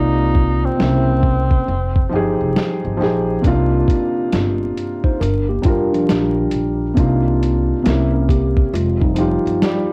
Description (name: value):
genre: lo-fi hip hop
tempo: 68 BPM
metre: 4/4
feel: swing 64% on 16ths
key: C minor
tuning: A4 = 440 Hz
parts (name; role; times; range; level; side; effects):
- breathy tenor saxophone; melody; 0.0-2.4, 9.6-9.9 s; G3 to Eb4; -26 LUFS; equal; low-pass filter, cassette tape
- felt-muted upright piano; accompaniment; 0.0-9.9 s; C3 to D5; -21 LUFS; equal; low-pass filter, cassette tape, plate reverb
- upright bass; bass; 0.0-9.6 s; F1 to C2; -22 LUFS; equal; transformer saturation
- lo-fi sampler-style drum kit; drums; 0.3-9.9 s; hi-hat, kick drum, snare drum; -21 LUFS; equal; none
- mellow tine electric piano; second line; 5.0-9.9 s; F3 to C5; -24 LUFS; equal; low-pass filter, cassette tape, analog delay, plate reverb
room: light reverb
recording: home recording on cassette, vinyl crackle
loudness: -17 LUFS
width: mono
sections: 0.0-9.9 A section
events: break 0.0-3.4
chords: 0.0 Cm11; 0.8 C7b9; 1.7 Fm9; 3.4 Cm11; 5.2 Gm7; 7.0 Cm11; 7.9 C7b9; 8.7 Fm9